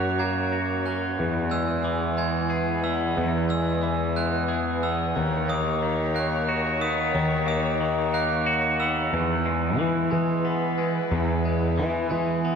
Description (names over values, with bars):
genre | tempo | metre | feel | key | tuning
post-rock | 60 BPM (dotted quarters) | 6/8 | straight | E lydian | A4 = 443 Hz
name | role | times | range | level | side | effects
muted studio string section | sustained chords | 0.0-12.6 s | D#3 to C#5 | -31 LUFS | right 1 dB | none
glockenspiel with hard plastic mallets | arpeggios | 0.0-9.1 s | D#6 to G#6 | -31 LUFS | right 4 dB | none
twangy electric guitar | arpeggios | 0.0-12.6 s | E2 to G#4 | -28 LUFS | left 2 dB | phaser
fuzz picked electric bass | bass | 0.0-12.6 s | D#2 to E3 | -25 LUFS | equal | overdrive
room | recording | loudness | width
wet church reverb, RT60 3.3 s | recorded in a church or concert hall | -22 LUFS | side -6 dB against mid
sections
0.0-9.1 A section; 9.1-12.6 B section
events
none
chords
0.0 F#; 1.2 E; 5.2 Bmaj7/D#; 9.1 E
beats
0.20 | 1.19 2.18 | 3.18 4.17 | 5.16 6.16 | 7.15 8.14 | 9.13 10.13 | 11.12 12.11